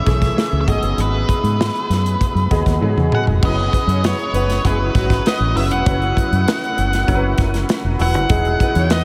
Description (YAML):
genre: polished 1980s jazz-funk pop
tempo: 98 BPM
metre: 4/4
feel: straight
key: unclear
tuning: A4 = 445 Hz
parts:
  - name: octave-fuzz lead guitar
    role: melody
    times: 0.0-9.0 s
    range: B4 to F#5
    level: -25 LUFS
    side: equal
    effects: distortion, diffuse ambient delay
  - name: clear baby grand piano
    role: accompaniment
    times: 0.0-9.0 s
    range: E3 to G#5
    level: -25 LUFS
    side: equal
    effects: ensemble chorus
  - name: fingered electric bass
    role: bass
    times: 0.1-9.0 s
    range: E1 to G#2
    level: -21 LUFS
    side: equal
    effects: none
  - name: modern studio drum kit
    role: drums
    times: 0.1-9.0 s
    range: crash cymbal, hi-hat, kick drum, snare drum, toms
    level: -22 LUFS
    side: equal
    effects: none
  - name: warm horn section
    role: second line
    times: 3.7-9.0 s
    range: F#3 to C#5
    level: -30 LUFS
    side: equal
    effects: diffuse ambient delay
room: wet huge ambient reverb, RT60 7.8 s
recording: dreamy mix soaked in reverb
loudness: -17 LUFS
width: mono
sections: 0.0-3.4 A section; 3.4-9.0 B section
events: grand piano fill 2.2-3.4; drum fill 2.8-3.4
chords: 0.0 Amaj7; 0.7 G#m7; 3.4 F#7sus4; 8.3 Emaj9